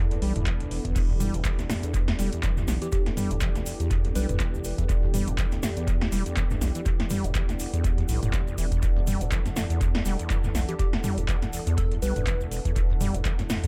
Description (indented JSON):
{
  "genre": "acid house",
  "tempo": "122 BPM",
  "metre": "4/4",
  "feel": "swing 56% on 16ths",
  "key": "E minor",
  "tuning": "A4 = 440 Hz",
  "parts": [
    { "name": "warm analog pad", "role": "sustained chords", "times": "0.0-13.7 s", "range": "E3 to A4", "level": "-40 LUFS", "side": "equal", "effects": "chorus, sidechain pumping" },
    { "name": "acid bass, saw", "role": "riff", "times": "0.0-13.7 s", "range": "E1 to G3", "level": "-35 LUFS", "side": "equal", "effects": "overdrive, subtle chorus, cassette tape, sidechain pumping, tape echo" },
    { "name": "round analog bass", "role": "bass", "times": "0.0-13.7 s", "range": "E1 to E2", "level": "-31 LUFS", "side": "equal", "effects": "sidechain pumping" },
    { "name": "deep dark ambient pad", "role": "texture", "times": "0.0-13.7 s", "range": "E4 to B5", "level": "-42 LUFS", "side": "equal", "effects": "chorus, built-in reverb, sidechain pumping" },
    { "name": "electro analog drum machine", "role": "drums", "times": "0.1-13.7 s", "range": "crash cymbal, handclaps, hi-hat, snare drum, toms", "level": "-34 LUFS", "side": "equal", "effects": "dub echo" },
    { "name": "electronic kick drum", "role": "drums", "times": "0.5-13.4 s", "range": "none", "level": "-29 LUFS", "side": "equal", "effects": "none" },
    { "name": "tube shaker", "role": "percussion", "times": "1.0-13.7 s", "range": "none", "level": "-44 LUFS", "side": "equal", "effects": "none" },
    { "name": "plucky unison lead", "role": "melody", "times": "2.8-4.5, 10.7-12.4 s", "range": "G4 to B4", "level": "-40 LUFS", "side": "equal", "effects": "cassette tape, dub echo" }
  ],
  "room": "little or no reverb",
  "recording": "echo-heavy mix",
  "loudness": "-26 LUFS",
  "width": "mono",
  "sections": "0.0-13.7 A section",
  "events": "none",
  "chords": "0.0 Em7"
}